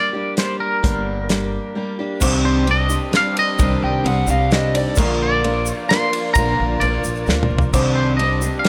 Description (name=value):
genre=folk rock and heartland rock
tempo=130 BPM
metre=3/4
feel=straight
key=C minor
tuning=A4 = 440 Hz
part: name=twangy electric guitar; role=melody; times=0.0-8.7 s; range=Bb4 to C6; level=-24 LUFS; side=equal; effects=tremolo, digital delay
part: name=picked steel-string acoustic guitar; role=accompaniment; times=0.0-8.7 s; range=G2 to Bb4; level=-25 LUFS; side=equal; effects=none
part: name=damped 70s drum kit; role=drums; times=0.4-8.7 s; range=crash cymbal, hi-hat, kick drum, ride cymbal, snare drum, toms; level=-24 LUFS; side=equal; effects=none
part: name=upright bass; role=bass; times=0.8-8.5 s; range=G1 to D2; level=-24 LUFS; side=equal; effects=none
part: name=dark upright piano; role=accompaniment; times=2.2-8.7 s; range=Eb4 to D6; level=-33 LUFS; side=equal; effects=none
part: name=musette accordion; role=sustained chords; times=2.2-8.7 s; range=Bb3 to D5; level=-32 LUFS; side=equal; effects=none
part: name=tube shaker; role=percussion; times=2.2-8.7 s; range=none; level=-34 LUFS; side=equal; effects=none
part: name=overdriven slide guitar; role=second line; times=3.8-5.0 s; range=D5 to G5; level=-24 LUFS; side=equal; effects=none
room=light reverb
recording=none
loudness=-18 LUFS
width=mono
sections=0.0-2.2 A section; 2.2-8.7 B section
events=break 1.8-2.2; drum fill 7.3-7.7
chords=0.0 Gm; 2.2 Cmadd9; 5.0 Bb; 7.7 Cmadd9